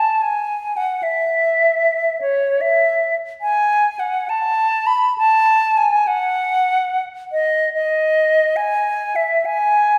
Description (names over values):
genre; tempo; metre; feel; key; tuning
classical, free, expressive piece for unaccompanied flute; 61-77 BPM; 3/4; rubato; E major; A4 = 441 Hz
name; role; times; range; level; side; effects
silver concert flute; solo; 0.0-10.0 s; C#5 to B5; -18 LUFS; equal; none
room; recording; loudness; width
wet recital hall reverb, RT60 1.7 s; recorded in a church or concert hall; -18 LUFS; mono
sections
0.0-10.0 A section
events
none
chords
none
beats
0.22 | 1.03 1.82 2.61 | 3.42 4.30 5.18 | 6.06 6.91 7.75 | 8.58 9.46